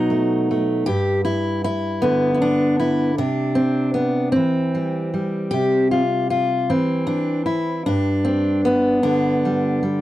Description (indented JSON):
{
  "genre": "folk, solo fingerstyle acoustic guitar",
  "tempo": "51 BPM (dotted quarters)",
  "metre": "6/8",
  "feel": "straight",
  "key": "unclear",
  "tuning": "A4 = 440 Hz",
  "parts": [
    { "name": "fingerpicked steel-string acoustic guitar", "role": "solo", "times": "0.0-10.0 s", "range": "G2 to G4", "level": "-18 LUFS", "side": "equal", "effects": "none" }
  ],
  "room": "little or no reverb",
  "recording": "dry, close 1970s-style studio recording",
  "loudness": "-18 LUFS",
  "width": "side -14 dB against mid",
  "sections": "0.0-10.0 A section",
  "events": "none",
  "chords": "0.0 B7; 0.9 G; 3.2 C; 7.9 G",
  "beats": "| 0.86 2.02 | 3.18 4.35 | 5.53 6.71 | 7.88 9.04"
}